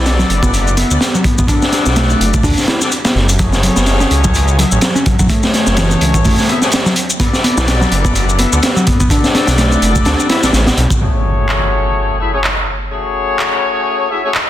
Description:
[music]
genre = breakbeat, breaks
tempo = 126 BPM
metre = 4/4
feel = swing 57% on 16ths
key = F# minor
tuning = A4 = 438 Hz
[part]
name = picked electric bass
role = riff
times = 0.0-10.7 s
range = E3 to E4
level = -17 LUFS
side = equal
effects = low-pass filter, digital delay
[part]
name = warm horn section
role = stabs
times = 0.0-14.3 s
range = A3 to E5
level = -18 LUFS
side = left 3 dB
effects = low-pass filter, digital delay
[part]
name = detuned saw bass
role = bass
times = 0.0-10.9 s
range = F#1 to D2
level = -14 LUFS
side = equal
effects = none
[part]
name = crunchy breakbeat drum kit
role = drums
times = 0.1-11.0 s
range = hi-hat, kick drum, snare drum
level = -14 LUFS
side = equal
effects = none
[part]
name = electronic shaker and handclaps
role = drums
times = 0.1-14.5 s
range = none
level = -21 LUFS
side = left 1 dB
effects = low-pass filter on perc, low-pass filter on snare, low-pass filter on room
[part]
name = impact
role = sound effects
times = 11.0-12.9 s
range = none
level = -18 LUFS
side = equal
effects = none
[sound]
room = light reverb, studio reverb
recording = dense, heavily limited modern master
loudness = -11 LUFS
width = side -12 dB against mid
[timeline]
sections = 0.0-11.0 A section; 11.0-14.5 B section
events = filter sweep on picked electric bass 0.0-11.0; impact 11.0-12.9; filter sweep on horn section 11.0-14.5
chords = 0.0 Bm7; 3.4 F#madd9; 7.2 Bm7; 11.0 F#madd9

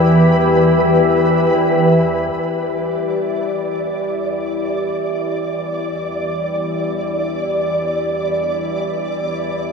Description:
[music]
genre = dark ambient drone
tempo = free time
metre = none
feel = none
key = E minor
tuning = A4 = 440 Hz
[part]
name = deep dark ambient pad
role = sustained chords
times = 0.0-9.7 s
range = E4 to D5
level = -19 LUFS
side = left 2 dB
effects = chorus, built-in reverb
[part]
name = organ-like drone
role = drone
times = 0.0-9.7 s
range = E2 to E3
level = -20 LUFS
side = right 1 dB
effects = ensemble chorus, built-in reverb
[part]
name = flickering grainy texture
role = texture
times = 0.0-9.7 s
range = B4 to D5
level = -21 LUFS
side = right 1 dB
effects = built-in reverb
[sound]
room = wet huge ambient reverb, RT60 8.6 s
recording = in a vast, echoing space, studio ambience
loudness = -16 LUFS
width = side -5 dB against mid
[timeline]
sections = 0.0-2.3 A section; 2.3-9.7 B section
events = fade-in on synth drone 2.3-9.7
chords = 0.0 Em

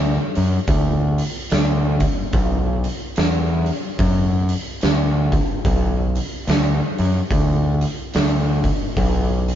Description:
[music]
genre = stoner and doom metal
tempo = 72 BPM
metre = 4/4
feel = swing 61% on 8ths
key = B minor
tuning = A4 = 440 Hz
[part]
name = growling fingered electric bass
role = bass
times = 0.0-9.5 s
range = B1 to F#2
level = -19 LUFS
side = equal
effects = overdrive
[part]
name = oversized low-tuned drum kit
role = drums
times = 0.4-9.6 s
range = hi-hat, kick drum, snare drum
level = -21 LUFS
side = equal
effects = none
[sound]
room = light reverb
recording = band playing live in one room, nothing above 7.4 kHz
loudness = -17 LUFS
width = side -10 dB against mid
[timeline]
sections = 0.0-9.6 A section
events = none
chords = none

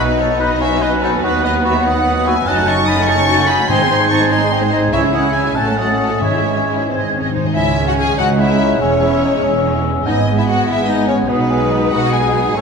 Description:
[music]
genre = classical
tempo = 96 BPM (dotted quarters)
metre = 6/8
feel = rubato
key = C# minor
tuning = A4 = 440 Hz
[part]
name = warm symphonic violin section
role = melody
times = 0.0-12.6 s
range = B4 to D#6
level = -22 LUFS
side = left 2 dB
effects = none
[part]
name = warm oboe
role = second line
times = 0.0-12.6 s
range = F#4 to B5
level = -23 LUFS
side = right 2 dB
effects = none
[part]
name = warm symphonic violin section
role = second line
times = 0.0-12.6 s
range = B3 to F#5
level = -24 LUFS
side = left 3 dB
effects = none
[part]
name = clear bassoon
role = accompaniment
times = 0.0-12.6 s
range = G#3 to E4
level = -22 LUFS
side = equal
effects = none
[part]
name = warm symphonic viola section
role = accompaniment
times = 0.0-12.6 s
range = E3 to F#4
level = -23 LUFS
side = right 2 dB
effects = none
[part]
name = mellow French horn section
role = sustained chords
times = 0.0-12.6 s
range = E3 to D#4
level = -22 LUFS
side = left 2 dB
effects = none
[part]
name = warm symphonic cello section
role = bass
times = 0.0-12.6 s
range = C#2 to C#3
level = -23 LUFS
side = right 4 dB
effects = none
[part]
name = warm symphonic double bass section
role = bass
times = 0.0-12.6 s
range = E1 to D#2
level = -22 LUFS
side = right 3 dB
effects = none
[part]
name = hollow large flute ensemble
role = second line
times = 0.4-12.6 s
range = B4 to A6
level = -23 LUFS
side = left 1 dB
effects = none
[part]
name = mellow clarinet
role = second line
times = 0.4-12.6 s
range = B3 to C#5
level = -26 LUFS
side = left 3 dB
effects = none
[part]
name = timpani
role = percussion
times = 3.7-7.5 s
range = G#2 to C#3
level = -24 LUFS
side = equal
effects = none
[sound]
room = wet scoring stage reverb, RT60 1.8 s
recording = minimal, uncompressed stereo recording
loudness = -13 LUFS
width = side -5 dB against mid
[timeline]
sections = 0.0-7.6 A section; 7.6-12.6 B section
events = timpani fill 6.9-7.6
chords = 0.0 B; 1.2 B/D#; 2.5 D#dim/F#; 3.7 G#; 4.9 C#m; 5.6 F#m/A; 6.2 C#m/G#; 6.9 G#; 7.6 C#m; 8.8 C#m/E; 10.1 G#m; 11.3 G#m/B

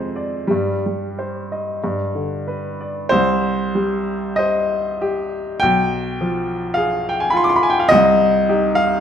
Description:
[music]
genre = classical, romantic nocturne for solo piano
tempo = 44-52 BPM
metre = 4/4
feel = rubato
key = C minor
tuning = A4 = 440 Hz
[part]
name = warm baby grand piano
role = solo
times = 0.0-9.0 s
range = B1 to D6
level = -16 LUFS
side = equal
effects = none
[sound]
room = moderate recital hall reverb, RT60 1.7 s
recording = none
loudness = -16 LUFS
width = side -8 dB against mid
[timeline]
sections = 0.0-3.1 A section; 3.1-9.0 B section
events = none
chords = 0.5 Cm/G; 1.8 G; 3.1 Cm; 5.6 G7b9/B; 7.9 Cm

